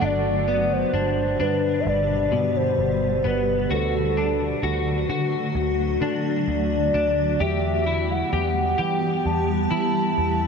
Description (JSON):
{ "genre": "dream pop", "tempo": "65 BPM", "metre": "4/4", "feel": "straight", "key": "G major", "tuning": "A4 = 440 Hz", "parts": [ { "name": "hollow clarinet-like synth lead", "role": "melody", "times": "0.0-10.5 s", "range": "A4 to A5", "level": "-25 LUFS", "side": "equal", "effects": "chorus, shimmer reverb, tape echo" }, { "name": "crunchy overdriven guitar", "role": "accompaniment", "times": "0.0-0.5 s", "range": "D3 to D4", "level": "-39 LUFS", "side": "right 4 dB", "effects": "tremolo, wide subtle chorus, shimmer reverb" }, { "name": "granular cloud pad", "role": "sustained chords", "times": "0.0-10.5 s", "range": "B2 to G4", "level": "-26 LUFS", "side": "equal", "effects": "built-in reverb" }, { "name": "clean electric guitar", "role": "arpeggios", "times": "0.0-10.5 s", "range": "B2 to G4", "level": "-26 LUFS", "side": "left 4 dB", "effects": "ensemble chorus, shimmer reverb, tape echo" }, { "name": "vintage muted picked electric bass", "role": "bass", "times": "0.0-10.5 s", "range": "G1 to E3", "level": "-27 LUFS", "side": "right 1 dB", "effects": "none" } ], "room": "moderate huge ambient reverb, RT60 7.5 s", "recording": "nothing above 10.4 kHz", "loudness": "-20 LUFS", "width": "side -5 dB against mid", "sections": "0.0-10.5 A section", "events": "none", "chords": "0.0 G; 3.7 D; 7.4 Em" }